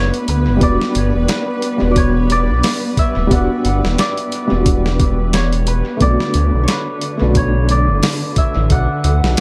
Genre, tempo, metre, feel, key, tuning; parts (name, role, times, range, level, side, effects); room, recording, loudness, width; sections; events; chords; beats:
trip hop; 89 BPM; 4/4; swing 57% on 16ths; A4 = 437 Hz
santur; melody; 0.0-9.4 s; B4 to F#5; -25 LUFS; equal; tape echo
felt-muted upright piano; accompaniment; 0.0-8.7 s; G3 to F#4; -23 LUFS; equal; tremolo, dub echo
muted studio string section; sustained chords; 0.0-9.4 s; D3 to B3; -26 LUFS; equal
dark detuned saw bass; bass; 0.0-9.4 s; D1 to D2; -18 LUFS; equal
bowed-like drone; texture; 0.0-9.4 s; B4; -35 LUFS; equal; built-in reverb
boom bap sampler-style drum kit; drums; 0.1-9.4 s; hi-hat, kick drum, snare drum; -20 LUFS; equal
light reverb; echo-heavy mix; -16 LUFS; mono
0.0-9.4 A section
0.0 Bm7; 0.6 Em7; 6.0 Bm7
| 0.61 1.29 1.96 2.64 | 3.31 3.99 4.66 5.33 | 6.01 6.68 7.36 8.03 | 8.71 9.38